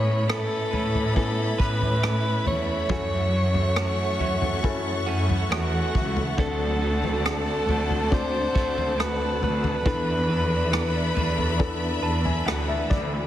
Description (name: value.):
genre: pop ballad.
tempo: 69 BPM.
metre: 4/4.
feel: straight.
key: A major.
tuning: A4 = 440 Hz.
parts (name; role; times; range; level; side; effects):
mellow alto saxophone; melody; 0.0-12.0 s; F#4 to C#5; -28 LUFS; equal; none.
felt-muted upright piano; accompaniment; 0.0-13.3 s; A2 to A5; -33 LUFS; left 5 dB; none.
warm symphonic string section; sustained chords; 0.0-13.3 s; A4 to C#6; -31 LUFS; left 2 dB; none.
direct-recorded clean electric guitar; arpeggios; 0.0-13.3 s; F#2 to B4; -32 LUFS; right 5 dB; tape echo.
warm symphonic cello section; bass; 0.0-13.3 s; C#2 to A2; -26 LUFS; equal; none.
unplugged drum kit; drums; 0.3-13.1 s; kick drum, rim click, toms; -28 LUFS; equal; none.
room: light reverb, studio reverb.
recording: heavily compressed radio sound, multiband compression.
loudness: -22 LUFS.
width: side -12 dB against mid.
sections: 0.0-13.3 A section.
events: felt piano fill 11.6-13.3.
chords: 0.0 Aadd9; 2.9 F#m7; 6.4 D7; 9.9 E7sus4.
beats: 0.29 1.17 2.03 | 2.90 3.77 4.64 5.51 | 6.38 7.25 8.12 8.99 | 9.86 10.73 11.60 12.47.